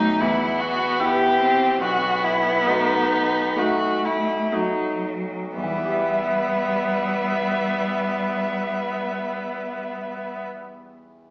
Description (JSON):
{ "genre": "classical, slow romantic movement for piano quartet", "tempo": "56-77 BPM", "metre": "4/4", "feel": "rubato", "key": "E minor", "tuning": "A4 = 440 Hz", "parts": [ { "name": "rich violin", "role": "melody", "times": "0.0-10.4 s", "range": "D#4 to E5", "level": "-23 LUFS", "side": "left 1 dB", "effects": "none" }, { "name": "rich cello", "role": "second line", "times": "0.0-10.4 s", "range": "F#3 to C4", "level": "-25 LUFS", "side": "equal", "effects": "none" }, { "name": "clear concert grand piano", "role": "accompaniment", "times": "0.0-11.3 s", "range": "B1 to E5", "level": "-27 LUFS", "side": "equal", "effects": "none" }, { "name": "rich viola", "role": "accompaniment", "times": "0.0-10.4 s", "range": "B3 to E5", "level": "-27 LUFS", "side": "equal", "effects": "none" } ], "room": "wet recital hall reverb, RT60 1.4 s", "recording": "recorded in a church or concert hall, small speaker sound", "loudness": "-20 LUFS", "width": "side -25 dB against mid", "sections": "0.0-5.6 A section; 5.6-9.8 B section", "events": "slowing down 0.0-5.6", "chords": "0.2 Em; 1.8 B7; 5.6 Em", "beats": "0.22 1.00 | 1.81 2.66 3.57 4.53 | 5.57 6.61 7.65 8.71" }